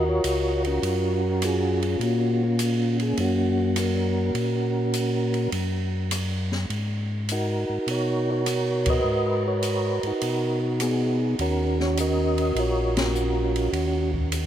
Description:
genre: soul jazz organ trio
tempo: 102 BPM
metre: 4/4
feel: swing 69% on 8ths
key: Eb minor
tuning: A4 = 444 Hz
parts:
  - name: percussive tonewheel organ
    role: melody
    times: 0.0-14.1 s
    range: Bb3 to Eb5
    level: -24 LUFS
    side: right 1 dB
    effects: slow rotary speaker, chorus vibrato
  - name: mellow tonewheel organ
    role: bass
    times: 0.0-14.5 s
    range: Bb1 to Cb3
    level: -26 LUFS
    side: left 1 dB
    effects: slow rotary speaker
  - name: open jazz drum kit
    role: drums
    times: 0.2-14.5 s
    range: hi-hat, kick drum, ride cymbal, rim click, snare drum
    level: -32 LUFS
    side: right 1 dB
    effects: none
room: moderate cathedral reverb, RT60 5.6 s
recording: in a vast, echoing space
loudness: -22 LUFS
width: side -10 dB against mid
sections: 0.0-14.5 A section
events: band accent 8.8, 12.9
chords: 0.0 Ebm9 (rootless); 6.7 Abm9; 11.4 Ebm9

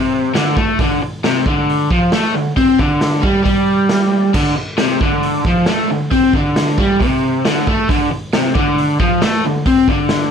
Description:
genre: garage rock duo or trio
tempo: 135 BPM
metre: 4/4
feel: straight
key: unclear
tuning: A4 = 440 Hz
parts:
  - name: crunchy overdriven guitar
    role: riff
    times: 0.0-10.3 s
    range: C3 to C4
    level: -14 LUFS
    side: left 1 dB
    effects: none
  - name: raw garage drum kit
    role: drums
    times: 0.4-10.2 s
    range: crash cymbal, hi-hat, kick drum, snare drum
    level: -18 LUFS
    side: equal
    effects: none
room: moderate studio ambience, RT60 0.5 s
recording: none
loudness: -13 LUFS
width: side -7 dB against mid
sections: 0.0-10.3 A section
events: none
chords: none

